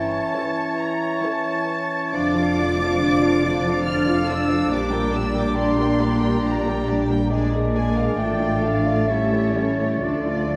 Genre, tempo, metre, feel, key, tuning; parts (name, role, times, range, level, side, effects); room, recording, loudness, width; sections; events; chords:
classical, slow romantic movement for symphony orchestra; 68 BPM; 3/4; uneven beats, rubato; D minor; A4 = 440 Hz
dark studio violin section; melody; 0.0-10.6 s; C#5 to F6; -33 LUFS; equal
bright clarinet; second line; 0.0-10.6 s; D4 to G4; -32 LUFS; equal
clear oboe; second line; 0.0-10.6 s; C#5 to D5; -33 LUFS; equal
mellow small flute group; second line; 0.0-10.6 s; Bb5 to A6; -34 LUFS; equal
mellow bassoon; accompaniment; 0.0-10.6 s; E3 to A3; -32 LUFS; equal
mellow French horn section; sustained chords; 0.0-10.6 s; E3 to D4; -28 LUFS; equal
rich symphonic cello section; bass; 0.0-10.6 s; F2 to D3; -28 LUFS; equal
rich symphonic double bass section; bass; 0.0-10.6 s; F1 to D2; -31 LUFS; equal
rich studio violin section; second line; 0.4-10.6 s; D4 to G5; -34 LUFS; equal
warm symphonic viola section; accompaniment; 0.4-10.6 s; D3 to F4; -30 LUFS; equal
wet concert hall reverb, RT60 2.3 s; -21 LUFS; mono
0.0-10.6 A section
0.0 A7/G; 2.1 Dm/F; 4.7 Gm/Bb; 7.3 Bb7; 8.2 Dm/A; 9.1 A7; 10.0 Dm